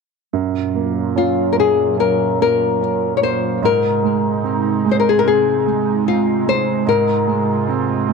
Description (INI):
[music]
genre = pop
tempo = 73 BPM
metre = 4/4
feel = straight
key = unclear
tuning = A4 = 444 Hz
[part]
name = warm grand piano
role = accompaniment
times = 0.3-8.1 s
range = Gb2 to Db4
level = -19 LUFS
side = right 12 dB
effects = none
[part]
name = airy breathy pad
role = sustained chords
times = 0.3-8.1 s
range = Bb2 to F4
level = -23 LUFS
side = right 1 dB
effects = chorus
[part]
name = nylon-string guitar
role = melody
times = 1.2-8.1 s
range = F4 to Db5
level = -17 LUFS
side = left 9 dB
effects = none
[sound]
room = moderate spring reverb, RT60 1.3 s, small room ambience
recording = 1960s-style stereo with parts hard left and right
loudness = -15 LUFS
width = side -4 dB against mid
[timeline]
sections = 0.3-8.1 A section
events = none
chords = 0.3 Gbmaj7; 3.6 Ab; 6.9 Fm/Ab